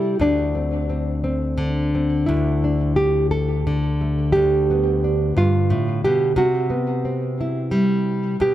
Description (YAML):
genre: folk, solo fingerstyle acoustic guitar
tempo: 59 BPM (dotted quarters)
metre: 6/8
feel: rubato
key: unclear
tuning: A4 = 440 Hz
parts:
  - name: nylon-string guitar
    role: solo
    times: 0.0-8.5 s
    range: D2 to A4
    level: -18 LUFS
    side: equal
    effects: tape echo
room: light reverb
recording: close, detailed microphones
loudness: -18 LUFS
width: side -12 dB against mid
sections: 0.0-2.3 A section; 2.3-8.5 A section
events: none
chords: 0.2 Csus2/D; 2.3 Dsus2; 4.3 G7/D; 6.4 Cmaj7